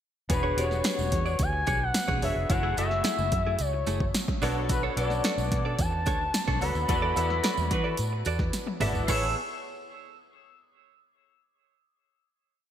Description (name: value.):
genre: polished 1980s jazz-funk pop.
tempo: 109 BPM.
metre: 4/4.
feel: straight.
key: A major.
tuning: A4 = 438 Hz.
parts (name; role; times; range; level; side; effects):
expressive synth lead; melody; 0.3-9.3 s; B4 to E6; -31 LUFS; left 2 dB; chorus, ping-pong delay.
bright grand piano; accompaniment; 0.3-9.3 s; A3 to E5; -33 LUFS; left 2 dB; ensemble chorus.
direct-recorded clean electric guitar; riff; 0.3-9.3 s; A3 to E5; -35 LUFS; right 5 dB; wide subtle chorus.
vintage muted fingered electric bass; bass; 0.3-9.3 s; E1 to E3; -30 LUFS; equal; none.
punchy analog drum machine; drums; 0.3-9.2 s; crash cymbal, hi-hat, kick drum, snare drum, toms; -30 LUFS; equal; overdrive, gated reverb.
tambourine; percussion; 0.3-9.3 s; none; -42 LUFS; right 4 dB; none.
clear horn section; second line; 6.9-9.3 s; A3 to C#5; -38 LUFS; right 3 dB; ping-pong delay.
room: moderate plate reverb, RT60 2.0 s.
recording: bright 1980s-style digital production.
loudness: -25 LUFS.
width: side -10 dB against mid.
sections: 0.3-9.1 pre-chorus; 9.1-11.3 final chord.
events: band accent 6.9-9.1; drum fill 8.5-9.1.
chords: 0.3 E13; 2.5 F#m9; 4.4 Bm9; 6.9 E9sus4; 9.1 Amaj7.